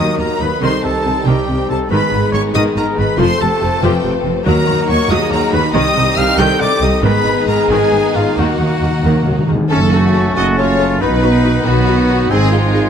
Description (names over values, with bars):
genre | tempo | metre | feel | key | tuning
cinematic, heroic adventure film score | 93 BPM (dotted quarters) | 6/8 | straight | Eb minor | A4 = 440 Hz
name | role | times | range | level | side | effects
warm symphonic violin section | melody | 0.0-12.8 s | F5 to G6 | -22 LUFS | left 3 dB | none
warm symphonic violin section | second line | 0.0-12.9 s | Bb3 to Eb5 | -21 LUFS | left 3 dB | none
warm symphonic viola section | accompaniment | 0.0-12.8 s | C3 to A4 | -20 LUFS | equal | none
bright trombone section | sustained chords | 0.0-12.9 s | C3 to C4 | -24 LUFS | right 5 dB | none
warm French horn section | sustained chords | 0.0-12.9 s | F3 to Cb5 | -22 LUFS | left 6 dB | none
warm trumpet | stabs | 0.0-12.9 s | Ab3 to G5 | -21 LUFS | right 2 dB | none
clear symphonic double bass section | bass | 0.0-12.9 s | F1 to Eb2 | -20 LUFS | right 2 dB | none
warm symphonic cello section | bass | 0.0-12.9 s | C2 to C3 | -20 LUFS | right 2 dB | none
timpani | percussion | 4.5-5.1, 8.4-9.7 s | Eb3 | -19 LUFS | left 1 dB | none
bright clarinet | second line | 9.7-12.9 s | Db4 to D#4 | -23 LUFS | left 3 dB | none
concert flute | second line | 9.7-12.9 s | B5 to Db6 | -26 LUFS | left 2 dB | none
warm oboe | second line | 9.7-12.9 s | F#5 to A5 | -25 LUFS | equal | none
room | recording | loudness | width
moderate scoring stage reverb, RT60 1.6 s | none | -12 LUFS | side -8 dB against mid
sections
0.0-9.7 A section; 9.7-12.9 B section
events
timpani fill 8.4-9.7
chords
0.0 Ebm; 0.6 Cm; 1.9 Abm; 3.2 F; 4.5 Ebm; 5.7 Cm; 7.0 Abm; 8.4 Ebm; 9.7 Gbm; 11.0 B; 12.3 Ab